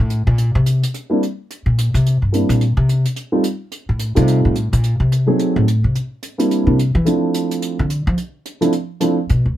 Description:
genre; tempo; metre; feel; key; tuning
jazz piano trio; 216 BPM; 4/4; swing 60% on 8ths; unclear; A4 = 440 Hz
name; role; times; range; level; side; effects
upright bass; bass; 0.0-9.6 s; D2 to F3; -15 LUFS; equal; none
hi-hat; drums; 0.1-9.4 s; none; -31 LUFS; right 2 dB; none
dark upright piano; melody; 1.1-9.2 s; F3 to Ab4; -17 LUFS; right 2 dB; none
room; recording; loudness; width
little or no reverb; none; -15 LUFS; side -13 dB against mid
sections
0.0-9.6 A section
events
upright bass solo 0.0-9.6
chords
0.4 C7(no3); 2.1 C7; 2.6 F7; 5.9 C7; 7.1 Dm7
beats
0.10 | 0.38 0.66 0.94 1.22 | 1.49 1.77 2.05 2.33 | 2.61 2.89 3.16 3.44 | 3.72 4.00 4.28 4.55 | 4.83 5.11 5.39 5.67 | 5.95 6.22 6.50 6.78 | 7.06 7.34 7.62 7.89 | 8.17 8.45 8.73 9.01 | 9.28 9.56

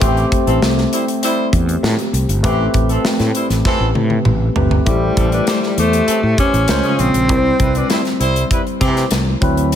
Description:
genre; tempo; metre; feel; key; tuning
polished 1980s jazz-funk pop; 99 BPM; 4/4; straight; A minor; A4 = 440 Hz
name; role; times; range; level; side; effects
warm horn section; second line; 0.0-9.1 s; E3 to D5; -22 LUFS; equal; none
barky tine electric piano; accompaniment; 0.0-9.8 s; C#3 to C5; -19 LUFS; left 2 dB; overdrive, wide subtle chorus
fretless electric bass; bass; 0.0-9.8 s; G1 to C3; -18 LUFS; equal; none
modern studio drum kit; drums; 0.0-9.8 s; hi-hat, kick drum, snare drum, toms; -19 LUFS; equal; gated reverb
bright alto saxophone; melody; 4.9-8.2 s; G3 to C#4; -18 LUFS; equal; none
room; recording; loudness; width
light reverb, studio ambience; none; -13 LUFS; side -9 dB against mid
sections
0.0-4.9 A section; 4.9-9.8 B section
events
drum fill 3.7-4.9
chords
0.0 Am9; 4.9 Am7; 6.7 C#maj7; 7.3 C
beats
| 0.01 0.62 1.23 1.83 | 2.44 3.04 3.65 4.26 | 4.87 5.47 6.08 6.69 | 7.29 7.90 8.51 9.11 | 9.72

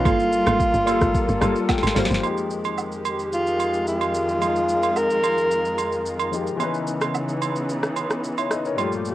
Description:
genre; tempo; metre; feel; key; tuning
amapiano; 110 BPM; 4/4; straight; unclear; A4 = 440 Hz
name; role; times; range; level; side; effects
breathy alto saxophone; melody; 0.0-6.3 s; F4 to Bb4; -23 LUFS; equal; cassette tape, tape echo
clear grand piano; accompaniment; 0.0-9.1 s; Fb3 to A5; -29 LUFS; left 6 dB; cassette tape
muted chamber string section; sustained chords; 0.0-9.1 s; F2 to A4; -27 LUFS; equal; sidechain pumping, cassette tape
buzzing marimba with hard mallets; stabs; 0.0-2.2 s; Bb3 to A4; -30 LUFS; right 7 dB; cassette tape, tape echo
tight log drum bass; bass; 0.0-2.2 s; G1 to Ab1; -24 LUFS; equal; none
afro-pop drum kit; drums; 0.1-9.1 s; hi-hat, kick drum, rim click, shaker, snare drum; -26 LUFS; equal; cassette tape
agogo bells and woodblock; percussion; 0.1-8.9 s; none; -29 LUFS; right 8 dB; none
room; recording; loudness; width
light reverb; home recording on cassette; -20 LUFS; side -14 dB against mid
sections
0.0-2.2 A section; 2.2-9.1 B section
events
drop 0.0-2.2; grand piano fill 1.1-2.2; drum fill 1.7-2.2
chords
0.1 Gm9; 2.2 Fm9; 6.6 Dbm9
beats
| 0.05 0.60 1.14 1.69 | 2.23 2.78 3.33 3.87 | 4.42 4.96 5.51 6.05 | 6.60 7.14 7.69 8.23 | 8.78

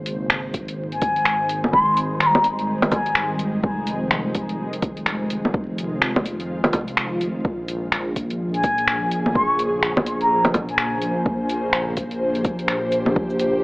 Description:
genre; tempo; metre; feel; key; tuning
future garage; 126 BPM; 4/4; swing 61% on 16ths; Bb dorian; A4 = 440 Hz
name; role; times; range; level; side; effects
ethereal airy pad; sustained chords; 0.0-13.6 s; Db3 to C5; -26 LUFS; equal; ensemble chorus, built-in reverb, sidechain pumping
dark detuned saw bass; bass; 0.0-13.6 s; F1 to Bb1; -28 LUFS; equal; sidechain pumping
deep house drum kit; drums; 0.1-13.5 s; bongos, cabasa, finger snaps, hi-hat; -21 LUFS; equal; overdrive
electronic kick drum; drums; 0.5-13.3 s; none; -25 LUFS; equal; overdrive
mellow wooden flute; melody; 0.9-3.3, 8.5-11.2 s; Ab5 to Db6; -22 LUFS; left 1 dB; tape echo
room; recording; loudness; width
moderate lush hall reverb, RT60 2.2 s; vinyl crackle, AM radio sound; -19 LUFS; side -22 dB against mid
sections
0.0-13.6 A section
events
none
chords
0.0 Abmaj7; 3.6 Fm7; 7.4 Bbm9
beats
0.30 0.78 1.25 | 1.73 2.21 2.68 3.16 | 3.63 4.11 4.59 5.06 | 5.54 6.01 6.49 6.97 | 7.44 7.92 8.39 8.87 | 9.35 9.82 10.30 10.78 | 11.25 11.73 12.21 12.68 | 13.16 13.63

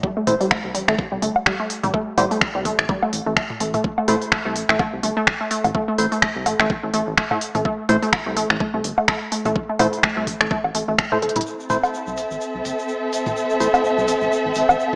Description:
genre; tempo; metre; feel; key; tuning
minimal techno; 126 BPM; 4/4; swing 57% on 16ths; A minor; A4 = 435 Hz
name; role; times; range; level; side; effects
resonant blip pluck; riff; 0.0-11.4 s; G3 to A4; -26 LUFS; equal; chorus, cassette tape, sidechain pumping, dub echo
electronic kick drum; drums; 0.0-11.1 s; none; -27 LUFS; equal; none
percussive organ stab; stabs; 0.3-13.7 s; A3 to C5; -25 LUFS; equal; chorus, phaser, tape echo
rubbery square bass; bass; 0.3-15.0 s; E1 to A2; -32 LUFS; equal; sidechain pumping
techno drum kit; drums; 0.3-14.7 s; finger snaps, hi-hat; -25 LUFS; equal; overdrive, low-pass filter on hats, low-pass filter on snare
electronic toms and woodblock; percussion; 0.3-15.0 s; none; -25 LUFS; equal; tape echo
tube shaker; percussion; 11.5-14.9 s; none; -39 LUFS; equal; none
dark symphonic string section; texture; 11.5-15.0 s; C4 to E5; -23 LUFS; equal; sidechain pumping
room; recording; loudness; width
wet digital room reverb, RT60 1.0 s; small speaker sound; -21 LUFS; mono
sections
0.0-11.5 A section; 11.5-15.0 B section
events
drum fill 11.2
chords
0.0 Am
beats
| 0.03 0.51 0.99 1.46 | 1.94 2.41 2.89 3.37 | 3.84 4.32 4.79 5.27 | 5.75 6.22 6.70 7.18 | 7.65 8.13 8.61 9.08 | 9.56 10.03 10.51 10.99 | 11.46 11.94 12.41 12.89 | 13.37 13.84 14.32 14.79

